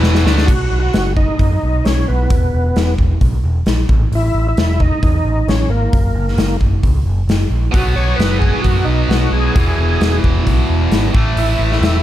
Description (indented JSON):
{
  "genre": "classic rock",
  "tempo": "132 BPM",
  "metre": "4/4",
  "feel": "straight",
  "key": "B major",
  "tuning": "A4 = 440 Hz",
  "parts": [
    { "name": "tight distorted guitar", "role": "riff", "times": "0.0-0.5, 7.7-12.0 s", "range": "E2 to D4", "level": "-19 LUFS", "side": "right 1 dB", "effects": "distortion" },
    { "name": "overdriven picked electric bass", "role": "bass", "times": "0.0-12.0 s", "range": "E1 to F#2", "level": "-16 LUFS", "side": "equal", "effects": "none" },
    { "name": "big rock drum kit", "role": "drums", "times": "0.0-11.9 s", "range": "crash cymbal, hi-hat, kick drum, snare drum", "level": "-17 LUFS", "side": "equal", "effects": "none" },
    { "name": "overdriven tonewheel organ", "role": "melody", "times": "0.5-12.0 s", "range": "A#3 to C#5", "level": "-20 LUFS", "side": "equal", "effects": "chorus vibrato, slow rotary speaker" }
  ],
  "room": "little or no reverb",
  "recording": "none",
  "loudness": "-12 LUFS",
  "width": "side -13 dB against mid",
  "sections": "0.5-12.0 A section",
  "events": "drum fill 0.0-0.5",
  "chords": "0.5 B; 2.3 E5; 3.9 A5; 5.9 F#; 7.7 B5; 9.6 E; 11.1 A5",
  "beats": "0.04 | 0.49 0.94 1.40 1.85 | 2.30 2.76 3.21 3.66 | 4.12 4.57 5.02 5.48 | 5.93 6.38 6.84 7.29 | 7.74 8.20 8.65 9.10 | 9.55 10.01 10.46 10.91 | 11.37 11.82"
}